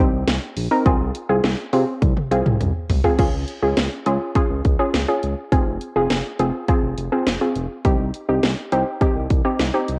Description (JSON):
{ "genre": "synth-pop", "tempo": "103 BPM", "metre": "4/4", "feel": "straight", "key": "F minor", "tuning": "A4 = 439 Hz", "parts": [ { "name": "warbly dusty pluck", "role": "accompaniment", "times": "0.0-10.0 s", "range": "C4 to Bb4", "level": "-24 LUFS", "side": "equal", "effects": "chorus" }, { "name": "smooth synth bass", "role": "bass", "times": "0.0-10.0 s", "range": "F1 to C3", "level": "-27 LUFS", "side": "equal", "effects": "none" }, { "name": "house drum kit", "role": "drums", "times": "0.3-10.0 s", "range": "crash cymbal, hi-hat, kick drum, snare drum, toms", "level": "-23 LUFS", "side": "equal", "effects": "cassette tape" } ], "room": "wet spring reverb, RT60 1.3 s, digital ambience", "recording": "home recording on cassette", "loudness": "-20 LUFS", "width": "mono", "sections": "0.0-3.2 A section; 3.2-10.0 B section", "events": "drum fill 2.0-3.2", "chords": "0.0 Cm; 0.9 Fm/C; 3.2 Db; 5.5 Fm; 7.8 Cm" }